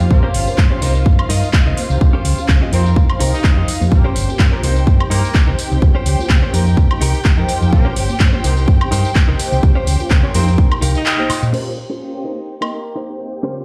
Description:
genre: filtered disco house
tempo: 126 BPM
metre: 4/4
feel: swing 55% on 16ths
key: Bb dorian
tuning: A4 = 441 Hz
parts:
  - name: mellow synth brass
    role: accompaniment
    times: 0.0-13.6 s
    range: Db3 to C5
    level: -28 LUFS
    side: equal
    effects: chorus, phaser, sidechain pumping, low-pass filter
  - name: warm studio violin section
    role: sustained chords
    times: 0.0-13.6 s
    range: F4 to G5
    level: -30 LUFS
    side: equal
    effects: sidechain pumping, low-pass filter
  - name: direct-recorded clean electric guitar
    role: riff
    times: 0.0-13.6 s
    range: Db4 to G5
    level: -27 LUFS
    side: equal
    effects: vintage 12-bit sampler grit, sidechain pumping, low-pass filter
  - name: hollow-body short-scale fingered electric bass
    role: bass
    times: 0.0-11.5 s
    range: G1 to Bb2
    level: -19 LUFS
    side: equal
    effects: tube saturation, sidechain pumping, low-pass filter
  - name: tambourine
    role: percussion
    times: 0.0-13.5 s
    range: none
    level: -35 LUFS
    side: equal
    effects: sidechain pumping on perc, low-pass filter on perc
  - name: warm horn section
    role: melody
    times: 0.1-13.1 s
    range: Bb3 to Eb5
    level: -28 LUFS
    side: equal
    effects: sidechain pumping, low-pass filter, digital delay
  - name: electronic kick drum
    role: drums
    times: 0.1-10.7 s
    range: none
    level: -15 LUFS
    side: equal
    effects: small room reverb
  - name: house drum kit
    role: drums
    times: 0.3-12.7 s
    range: crash cymbal, handclaps, hi-hat, woodblock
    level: -25 LUFS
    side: equal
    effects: sidechain pumping on hats, small room reverb, sidechain pumping on perc, sidechain pumping on cymbals
room: digital ambience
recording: played on a big sound system in a bare room, large studio reverb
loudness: -15 LUFS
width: mono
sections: 0.0-11.5 A section; 11.5-13.6 B section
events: clean electric guitar fill 10.6-11.5; kick drops out 11.1-11.5; band accent 11.1; filter sweep 11.5-13.6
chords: 0.1 Bbm69; 0.8 Cm7; 2.0 Bbm69/Db; 2.7 F9sus4; 3.9 Bbm69; 4.6 Cm7; 5.8 Bbm69/Db; 6.5 F9sus4; 7.7 Bbm69; 8.4 Cm7; 9.6 Bbm69/Db; 10.3 F9sus4; 11.5 Bbm69; 12.3 Cm7

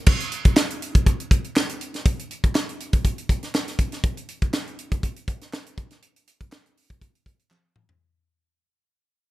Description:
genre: pop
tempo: 121 BPM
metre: 4/4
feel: swing 54% on 16ths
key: none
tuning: none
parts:
  - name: tight funk drum kit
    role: drums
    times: 0.1-8.0 s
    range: crash cymbal, hi-hat, kick drum, snare drum, toms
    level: -20 LUFS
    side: equal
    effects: none
  - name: group handclap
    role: percussion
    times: 0.6-7.6 s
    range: none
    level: -35 LUFS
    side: right 2 dB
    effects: none
room: little or no reverb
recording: none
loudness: -21 LUFS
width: side -17 dB against mid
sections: 0.1-8.0 A section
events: fade-out 0.1-8.0; drum fill 7.5-8.0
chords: none

